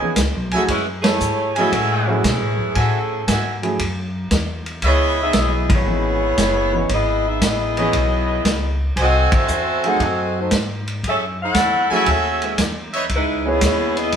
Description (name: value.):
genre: jazz, big band swing.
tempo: 116 BPM.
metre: 4/4.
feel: swing 69% on 8ths.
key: C# minor.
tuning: A4 = 440 Hz.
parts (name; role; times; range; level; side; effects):
mellow saxophone section; melody; 0.0-14.1 s; E3 to G#5; -20 LUFS; equal; none.
warm baby grand piano; accompaniment; 0.0-14.1 s; E3 to D#5; -24 LUFS; right 2 dB; none.
brilliant trumpet section; stabs; 0.0-13.0 s; D#4 to G#5; -22 LUFS; right 2 dB; none.
upright bass; bass; 0.0-14.2 s; F#1 to B2; -23 LUFS; left 1 dB; none.
vintage drum kit; drums; 0.2-14.2 s; hi-hat, kick drum, ride cymbal, snare drum; -23 LUFS; equal; none.
room: moderate stone room reverb, RT60 1.0 s.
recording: band playing live in one room.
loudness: -16 LUFS.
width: side -8 dB against mid.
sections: 0.0-14.2 A section.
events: band accent 0.9, 5.6, 9.2.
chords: 0.0 C#m9; 0.7 F#m9; 4.8 C#m9; 9.0 G#7b9; 11.0 F#m9; 13.1 C#m9.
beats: 0.17 | 0.69 1.21 1.72 2.24 | 2.76 3.27 3.79 4.31 | 4.83 5.34 5.86 6.38 | 6.89 7.41 7.93 8.45 | 8.96 9.48 10.00 10.52 | 11.03 11.55 12.07 12.59 | 13.10 13.62 14.14.